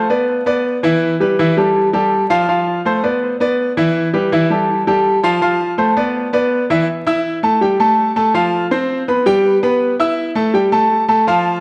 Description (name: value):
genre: latin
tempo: 164 BPM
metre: 4/4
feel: straight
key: unclear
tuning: A4 = 440 Hz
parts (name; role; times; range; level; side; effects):
- bright grand piano; solo; 0.0-11.6 s; E3 to E6; -16 LUFS; equal; analog delay
room: wet recital hall reverb, RT60 1.4 s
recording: dark, warm production, vinyl crackle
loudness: -15 LUFS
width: mono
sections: 0.0-6.9 A section; 6.9-11.6 B section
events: none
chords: 0.3 Bmadd11; 1.0 Emadd11; 1.7 Fadd9; 2.5 Dm7; 3.2 Bmadd11; 3.9 Emadd11; 4.7 Fadd9; 5.4 Dm7; 6.1 Bmadd11; 6.9 A5; 7.6 Gsus2; 8.3 F5; 9.1 G; 9.8 Asus2; 10.5 Gsus2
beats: 0.28 0.65 | 1.02 1.38 1.75 2.12 | 2.48 2.85 3.21 3.58 | 3.95 4.31 4.68 5.05 | 5.42 5.78 6.15 6.51 | 6.88 7.25 7.61 7.98 | 8.35 8.71 9.08 9.44 | 9.81 10.18 10.54 10.91 | 11.27